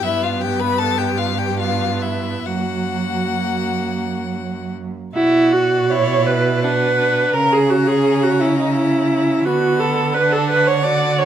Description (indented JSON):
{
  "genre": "classical, slow romantic movement for string quartet",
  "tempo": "66-87 BPM",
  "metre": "3/4",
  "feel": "rubato",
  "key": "B minor",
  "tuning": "A4 = 441 Hz",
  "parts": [
    { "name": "clear violin", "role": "melody", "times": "0.0-11.3 s", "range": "D5 to B5", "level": "-26 LUFS", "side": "left 12 dB", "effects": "none" },
    { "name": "rich violin", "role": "second line", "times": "0.0-11.3 s", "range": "B3 to B4", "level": "-23 LUFS", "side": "left 2 dB", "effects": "none" },
    { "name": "rich viola", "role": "accompaniment", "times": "0.0-11.3 s", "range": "A#3 to D5", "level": "-18 LUFS", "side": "right 2 dB", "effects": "none" },
    { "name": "warm cello", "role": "bass", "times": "0.1-11.3 s", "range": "F#2 to D3", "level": "-23 LUFS", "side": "right 5 dB", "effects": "none" }
  ],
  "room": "moderate recital hall reverb, RT60 1.3 s",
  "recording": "close, detailed microphones",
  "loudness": "-15 LUFS",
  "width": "side -10 dB against mid",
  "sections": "0.0-5.1 A section; 5.1-11.3 B section",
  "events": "none",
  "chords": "0.1 G13; 2.5 F#; 5.1 Bm; 7.3 A#dim/C#; 9.4 Bm/D"
}